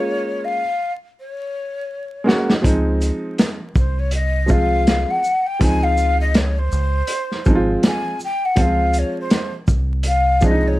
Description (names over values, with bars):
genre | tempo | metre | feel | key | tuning
hip hop, jazz-hop | 81 BPM | 4/4 | swing 57% on 16ths | Db major | A4 = 442 Hz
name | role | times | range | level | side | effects
breathy mellow jazz flute | melody | 0.0-10.8 s | C5 to Ab5 | -21 LUFS | left 2 dB | none
dark grand piano | accompaniment | 0.0-10.8 s | F3 to Gb4 | -21 LUFS | right 1 dB | none
vintage drum kit | drums | 2.3-10.6 s | hi-hat, kick drum, shaker, snare drum | -18 LUFS | equal | none
deep dub fingered electric bass | bass | 2.6-10.8 s | Ab1 to Db2 | -19 LUFS | equal | none
room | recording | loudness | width
light reverb | vinyl crackle | -16 LUFS | side -17 dB against mid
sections
0.0-2.6 A section; 2.6-10.8 B section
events
break 0.0-2.6; drum fill 1.2-2.6; flute solo 2.6-10.8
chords
0.0 Gbmaj9 (rootless); 2.6 Dbmaj9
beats
0.43 1.17 1.91 | 2.65 3.39 4.13 4.87 | 5.61 6.35 7.09 7.83 | 8.57 9.31 10.06